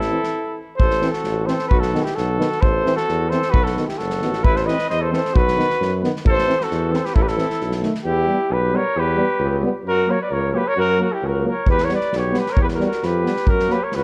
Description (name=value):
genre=balkan folk, Balkan brass band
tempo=133 BPM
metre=2/4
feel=straight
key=A dorian sharp4, E dorian sharp4 from 8.1 s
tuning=A4 = 439 Hz
part: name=mellow flugelhorn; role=melody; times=0.0-14.0 s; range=G4 to D#5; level=-24 LUFS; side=equal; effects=none
part: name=warm trumpet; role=second line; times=0.0-14.0 s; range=E4 to C5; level=-30 LUFS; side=equal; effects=none
part: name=warm tuba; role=bass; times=0.0-14.0 s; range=F#1 to F#2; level=-26 LUFS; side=equal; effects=none
part: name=unplugged drum kit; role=percussion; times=0.0-8.0, 11.7-14.0 s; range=kick drum, snare drum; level=-24 LUFS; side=equal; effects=none
part: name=clear French horn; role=accompaniment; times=0.1-13.8 s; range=A3 to C4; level=-31 LUFS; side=equal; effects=none
part: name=warm euphonium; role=accompaniment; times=0.1-13.8 s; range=D#3 to G3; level=-31 LUFS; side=equal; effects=none
room=light reverb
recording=dark, warm production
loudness=-20 LUFS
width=mono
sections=0.8-8.1 A section; 8.1-14.0 B section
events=stop 0.3-0.8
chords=0.0 Am; 1.7 B; 2.6 Am; 3.5 B; 4.4 Am; 5.3 B; 6.2 Am; 7.6 B7; 8.1 Em; 9.9 F#; 11.7 Em; 13.5 F#